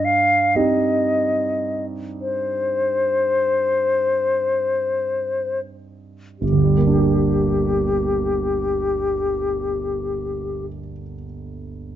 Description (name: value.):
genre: classical, romantic duo for flute and grand piano.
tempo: 25-39 BPM (dotted quarters).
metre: 12/8.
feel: rubato.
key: G minor.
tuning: A4 = 441 Hz.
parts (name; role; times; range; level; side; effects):
concert flute; melody; 0.0-10.7 s; G4 to F5; -20 LUFS; left 2 dB; none.
clear concert grand piano; accompaniment; 0.0-12.0 s; G1 to G4; -23 LUFS; right 3 dB; none.
room: moderate studio reverb, RT60 0.8 s.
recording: dark, warm production, nothing above 7.7 kHz.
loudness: -18 LUFS.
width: side -11 dB against mid.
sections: 0.0-6.4 A section; 6.4-12.0 B section.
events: slowing down 0.0-6.4.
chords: 0.0 Cm/G; 6.4 Gm.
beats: 0.55 2.20 4.12 | 6.41 8.65 10.87.